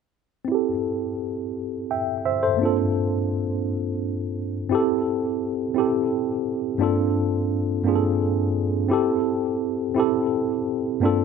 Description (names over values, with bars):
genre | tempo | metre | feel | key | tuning
R&B | 57 BPM (dotted quarters) | 6/8 | straight | unclear | A4 = 440 Hz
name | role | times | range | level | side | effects
tine electric piano | solo | 0.4-11.2 s | G2 to G5 | -21 LUFS | equal | slow stereo tremolo, low-pass filter
room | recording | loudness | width
light reverb | none | -21 LUFS | side -6 dB against mid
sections
0.5-4.7 A section; 4.7-11.2 B section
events
filter sweep on tine electric piano 0.5-4.7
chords
0.5 Am7; 2.6 Gm11; 4.7 Am7; 6.8 Gm11; 8.9 Am7